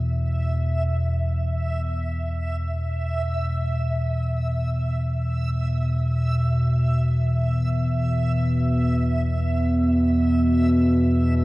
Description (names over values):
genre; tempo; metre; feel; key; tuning
dark ambient drone; free time; none; none; unclear; A4 = 440 Hz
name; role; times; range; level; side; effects
analog drone; drone; 0.0-11.4 s; E2 to B2; -20 LUFS; equal; chorus
backwards swelling texture; texture; 0.0-11.4 s; E5; -32 LUFS; right 2 dB; built-in reverb
room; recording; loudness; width
wet cathedral reverb, RT60 5.2 s; worn, warbling old tape, cassette tape, warbly pitch drift; -20 LUFS; side -19 dB against mid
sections
0.0-11.4 A section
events
none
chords
0.0 E5